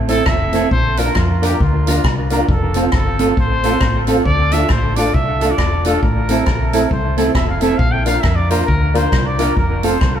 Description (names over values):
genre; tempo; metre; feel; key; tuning
ska; 136 BPM; 4/4; swing 60% on 8ths; unclear; A4 = 441 Hz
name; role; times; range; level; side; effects
hollow-body short-scale fingered electric bass; bass; 0.0-10.2 s; E1 to F2; -18 LUFS; left 1 dB; none
breathy trumpet; melody; 0.1-10.2 s; F4 to G5; -22 LUFS; equal; none
mellow electric guitar; accompaniment; 0.1-10.0 s; C4 to Bb4; -20 LUFS; right 3 dB; dub echo
tonewheel organ; stabs; 0.1-9.9 s; A3 to Bb4; -23 LUFS; left 2 dB; overdrive, chorus vibrato, slow rotary speaker
swinging big-band drum kit; drums; 0.1-10.1 s; hi-hat, kick drum, rim click; -19 LUFS; equal; none
room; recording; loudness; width
wet stone room reverb, RT60 1.2 s; band playing live in one room; -13 LUFS; side -9 dB against mid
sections
0.0-10.2 A section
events
trumpet solo 0.0-10.2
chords
0.0 Am; 0.7 Bb; 2.5 F; 4.3 Dm; 6.0 Am; 7.8 Bb; 9.6 F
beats
0.27 | 0.71 1.16 1.60 2.04 | 2.49 2.93 3.37 3.82 | 4.26 4.70 5.14 5.59 | 6.03 6.47 6.91 7.36 | 7.80 8.24 8.68 9.13 | 9.57 10.01